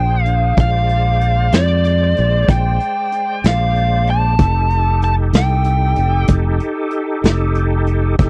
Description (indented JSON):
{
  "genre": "slow blues",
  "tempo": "63 BPM (dotted quarters)",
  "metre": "12/8",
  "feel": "straight",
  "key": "F mixolydian",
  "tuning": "A4 = 440 Hz",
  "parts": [
    { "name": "biting lead guitar", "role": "melody", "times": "0.0-6.3 s", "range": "D5 to A5", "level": "-21 LUFS", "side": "equal", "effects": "overdrive" },
    { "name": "bright tonewheel organ", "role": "sustained chords", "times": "0.0-8.3 s", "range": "Ab3 to D5", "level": "-26 LUFS", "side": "equal", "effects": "slow rotary speaker, chorus vibrato" },
    { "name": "fingered electric bass", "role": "bass", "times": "0.0-8.3 s", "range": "F1 to F2", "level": "-18 LUFS", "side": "equal", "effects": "none" },
    { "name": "vintage brush drum kit", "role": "drums", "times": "0.3-8.3 s", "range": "hi-hat, kick drum, snare drum", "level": "-16 LUFS", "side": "equal", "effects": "none" }
  ],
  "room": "little or no reverb",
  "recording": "dry, close 1970s-style studio recording",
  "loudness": "-16 LUFS",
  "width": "mono",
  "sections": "0.0-8.3 A section",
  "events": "none",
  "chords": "0.0 Bb9; 4.4 F9",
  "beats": "| 0.59 1.54 2.49 3.44 | 4.39 5.35 6.30 7.25 | 8.20"
}